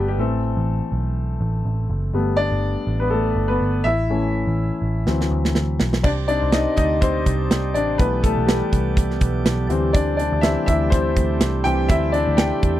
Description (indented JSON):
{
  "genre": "piano-driven pop",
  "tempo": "123 BPM",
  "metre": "4/4",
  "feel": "swing 56% on 16ths",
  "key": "G major",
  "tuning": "A4 = 440 Hz",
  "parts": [
    { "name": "clear concert grand piano", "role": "accompaniment", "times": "0.0-12.8 s", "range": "E3 to G5", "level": "-22 LUFS", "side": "left 3 dB", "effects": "none" },
    { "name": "vintage muted picked electric bass", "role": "bass", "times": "0.0-12.8 s", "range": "F#1 to E2", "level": "-22 LUFS", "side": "right 1 dB", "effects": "none" },
    { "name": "modern studio drum kit", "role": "drums", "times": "5.1-12.8 s", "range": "crash cymbal, hi-hat, kick drum, snare drum", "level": "-19 LUFS", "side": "right 1 dB", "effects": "none" },
    { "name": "chamber organ, sparkling flutes", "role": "sustained chords", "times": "6.0-12.8 s", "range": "C3 to D5", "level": "-28 LUFS", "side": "right 7 dB", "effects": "none" }
  ],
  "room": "little or no reverb",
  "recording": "dry, close 1970s-style studio recording",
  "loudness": "-18 LUFS",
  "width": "side -13 dB against mid",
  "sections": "0.0-6.0 A section; 6.0-12.8 B section",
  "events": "grand piano solo 0.0-6.0, 6.0-12.8; drum fill 5.1-6.0",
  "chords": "0.2 Am; 2.1 Gadd9; 3.8 A; 5.1 D7; 6.0 Cmadd9; 8.0 G6/B; 9.7 D7sus4"
}